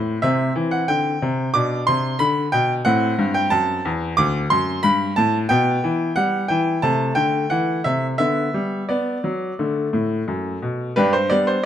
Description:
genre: classical-period piano sonatina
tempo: 89 BPM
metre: 4/4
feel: uneven beats, rubato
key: G major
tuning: A4 = 440 Hz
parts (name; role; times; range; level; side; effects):
- bright baby grand piano; solo; 0.0-11.6 s; D2 to D6; -18 LUFS; equal; none
room: moderate recital hall reverb, RT60 1.3 s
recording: close, detailed microphones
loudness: -18 LUFS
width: side -10 dB against mid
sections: 0.0-11.0 A section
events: none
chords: 0.2 C; 1.5 Gadd11/B; 2.9 D7; 5.5 G/B; 6.8 Am/C; 8.2 G/D; 9.6 D; 11.0 G

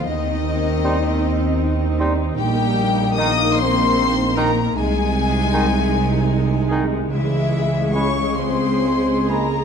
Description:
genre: classical, slow romantic movement for symphony orchestra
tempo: 51 BPM (dotted quarters)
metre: 6/8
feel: uneven beats, rubato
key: Ab major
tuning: A4 = 439 Hz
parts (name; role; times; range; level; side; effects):
- warm chamber violin section; melody; 0.0-9.6 s; Eb5 to Eb6; -26 LUFS; left 6 dB; none
- mellow hollow silver concert flute; second line; 0.0-9.6 s; Eb5 to Eb6; -27 LUFS; left 3 dB; none
- warm chamber violin section; second line; 0.0-9.6 s; Eb4 to Eb5; -29 LUFS; left 7 dB; none
- dark symphonic viola section; accompaniment; 0.0-9.6 s; Ab3 to Ab4; -26 LUFS; right 1 dB; none
- dark trombone section; sustained chords; 0.0-9.6 s; Db3 to C4; -28 LUFS; right 4 dB; none
- mellow French horn section; sustained chords; 0.0-9.6 s; Eb3 to Eb4; -24 LUFS; left 4 dB; none
- dark chamber double bass section; bass; 0.0-9.6 s; Bb1 to Eb2; -25 LUFS; right 1 dB; none
- dark tuba; bass; 0.0-9.6 s; Bb1 to Eb2; -26 LUFS; right 5 dB; none
- warm symphonic cello section; bass; 0.0-9.6 s; Bb2 to Eb3; -26 LUFS; right 2 dB; none
- dark cor anglais; second line; 0.8-9.5 s; Ab4 to C5; -30 LUFS; right 3 dB; none
- warm clarinet; second line; 0.8-9.5 s; Eb4 to Fb4; -31 LUFS; equal; none
- warm bassoon; accompaniment; 0.8-9.5 s; Eb3 to Ab3; -30 LUFS; right 1 dB; none
room: moderate scoring stage reverb, RT60 1.5 s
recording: dark, warm production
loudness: -16 LUFS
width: side -6 dB against mid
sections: 0.0-9.6 A section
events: none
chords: 0.1 Cm/Eb; 2.4 Eb/Bb; 4.8 Ab/C; 7.1 Dbm

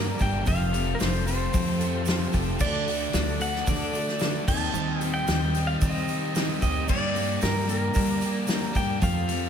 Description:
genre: folk rock and heartland rock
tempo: 112 BPM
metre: 4/4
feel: straight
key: G minor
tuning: A4 = 440 Hz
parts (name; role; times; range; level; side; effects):
- pedal steel guitar; melody; 0.0-9.5 s; Bb4 to A5; -30 LUFS; equal; slapback echo
- picked steel-string acoustic guitar; accompaniment; 0.0-9.5 s; G2 to Bb4; -32 LUFS; left 3 dB; none
- tonewheel organ; sustained chords; 0.0-9.5 s; D4 to Eb5; -39 LUFS; equal; slow rotary speaker, chorus vibrato
- crunchy overdriven guitar; riff; 0.0-9.5 s; G2 to D4; -31 LUFS; right 1 dB; none
- upright bass; bass; 0.0-9.5 s; F1 to G3; -29 LUFS; equal; none
- natural country drum kit; drums; 0.2-9.4 s; crash cymbal, hi-hat, kick drum, snare drum; -28 LUFS; equal; none
- egg shaker; percussion; 0.2-9.4 s; none; -42 LUFS; right 14 dB; none
room: moderate concert hall reverb, RT60 2.5 s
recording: big arena sound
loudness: -23 LUFS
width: side -8 dB against mid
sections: 0.0-9.5 A section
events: none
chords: 0.5 Fadd9; 2.6 D; 4.5 Cm/Eb; 6.9 Gm

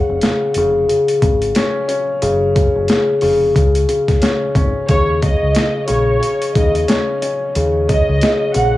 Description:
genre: hip hop, boom-bap hip-hop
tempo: 90 BPM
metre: 4/4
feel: swing 59% on 16ths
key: Eb minor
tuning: A4 = 440 Hz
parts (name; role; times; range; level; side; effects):
- dark grand piano; accompaniment; 0.0-8.8 s; Db3 to Db4; -16 LUFS; left 2 dB; high-pass filter, low-pass filter, cassette tape
- deep dub fingered electric bass; bass; 0.1-8.8 s; F1 to Eb2; -19 LUFS; equal; transformer saturation
- boom bap sampler-style drum kit; drums; 0.2-8.7 s; hi-hat, kick drum, snare drum; -18 LUFS; equal; overdrive, cassette tape
- dark studio violin section; melody; 4.9-8.8 s; Db5 to Gb5; -21 LUFS; right 2 dB; high-pass filter, low-pass filter, cassette tape, tape echo
room: moderate spring reverb, RT60 2.5 s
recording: home recording on cassette, studio ambience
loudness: -13 LUFS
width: side -16 dB against mid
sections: 0.0-4.9 A section; 4.9-8.8 A section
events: none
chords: 0.0 N.C.; 4.9 Eb7(no3)

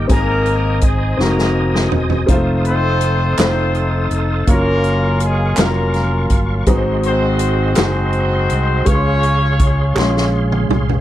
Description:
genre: slow gospel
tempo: 55 BPM (dotted quarters)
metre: 6/8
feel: straight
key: unclear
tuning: A4 = 440 Hz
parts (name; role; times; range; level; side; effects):
- clear horn section; melody; 0.0-10.3 s; Ab3 to Db5; -20 LUFS; left 1 dB; none
- warm concert grand piano; accompaniment; 0.0-11.0 s; Ab2 to C6; -20 LUFS; left 1 dB; none
- bright tonewheel organ; sustained chords; 0.0-11.0 s; Ab4 to Eb6; -27 LUFS; right 2 dB; slow rotary speaker, chorus vibrato
- fingered electric bass; bass; 0.0-11.0 s; Fb1 to Db2; -18 LUFS; equal; none
- swinging big-band drum kit; drums; 0.1-11.0 s; hi-hat, kick drum, snare drum, toms; -18 LUFS; equal; none
- group handclap; percussion; 3.4-10.3 s; none; -25 LUFS; right 6 dB; none
room: little or no reverb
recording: none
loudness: -13 LUFS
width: side -13 dB against mid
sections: 0.0-11.0 A section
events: drum fill 1.2-2.3, 10.0-11.0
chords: 0.1 Ab; 2.3 F7; 4.5 Gbmaj7; 6.7 Ab7; 8.9 Dbmaj7

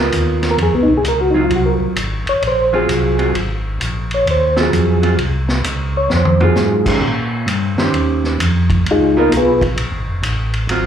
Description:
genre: soul jazz organ trio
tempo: 131 BPM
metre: 4/4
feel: swing 66% on 8ths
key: Ab mixolydian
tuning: A4 = 440 Hz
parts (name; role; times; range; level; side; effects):
- vintage hollow-body jazz guitar; accompaniment; 0.0-10.9 s; Eb3 to C5; -18 LUFS; right 4 dB; slapback echo
- mellow tonewheel organ; bass; 0.0-10.9 s; F1 to Bb2; -18 LUFS; equal; none
- vintage drum kit; drums; 0.1-10.8 s; crash cymbal, hi-hat, kick drum, ride cymbal, snare drum, toms; -22 LUFS; equal; none
- percussive tonewheel organ; melody; 0.5-9.6 s; Ab3 to Db5; -16 LUFS; left 1 dB; chorus vibrato, slow rotary speaker, slapback echo
room: light reverb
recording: live gig heard through the venue's PA, club reverb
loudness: -13 LUFS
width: side -9 dB against mid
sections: 0.0-10.9 A section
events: tonewheel organ solo 0.0-10.9; drum fill 6.1-6.6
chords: 0.0 Db13; 1.5 Ab13; 7.0 Eb13; 8.9 Db13

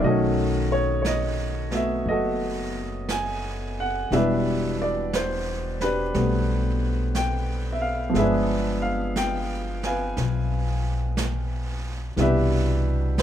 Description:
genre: jazz ballad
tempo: 60 BPM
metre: 4/4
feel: swing 66% on 8ths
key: unclear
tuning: A4 = 440 Hz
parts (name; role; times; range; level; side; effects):
- warm upright piano; accompaniment; 0.0-13.2 s; B2 to Ab5; -24 LUFS; equal; none
- upright bass; bass; 0.0-13.2 s; E1 to C2; -26 LUFS; left 1 dB; none
- jazz brush drum kit; drums; 0.0-13.2 s; brushed snare drum, hi-hat, snare drum; -34 LUFS; right 3 dB; none
room: little or no reverb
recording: none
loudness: -22 LUFS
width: side -10 dB against mid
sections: 0.0-13.2 A section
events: none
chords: 0.0 B7; 4.1 Em7; 8.1 G7b9; 12.2 Cmaj9

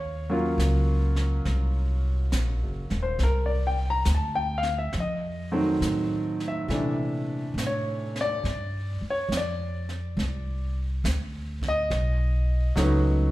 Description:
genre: jazz ballad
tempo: 69 BPM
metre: 4/4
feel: swing 66% on 8ths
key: unclear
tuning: A4 = 439 Hz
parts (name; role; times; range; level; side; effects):
- warm concert grand piano; accompaniment; 0.0-13.3 s; C3 to Bb5; -28 LUFS; equal; none
- upright bass; bass; 0.0-13.3 s; Eb1 to Bb2; -26 LUFS; equal; none
- jazz brush drum kit; drums; 0.6-13.3 s; brushed snare drum, hi-hat, kick drum, snare drum; -37 LUFS; right 2 dB; none
room: moderate recital hall reverb, RT60 1.4 s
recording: recorded in a church or concert hall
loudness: -24 LUFS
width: side -16 dB against mid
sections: 0.0-13.3 A section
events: none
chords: 0.0 Ebm7; 3.2 Csus2; 4.9 F7b9; 6.7 Bbmaj9#11; 8.4 G5; 10.2 Csus2; 11.9 B9

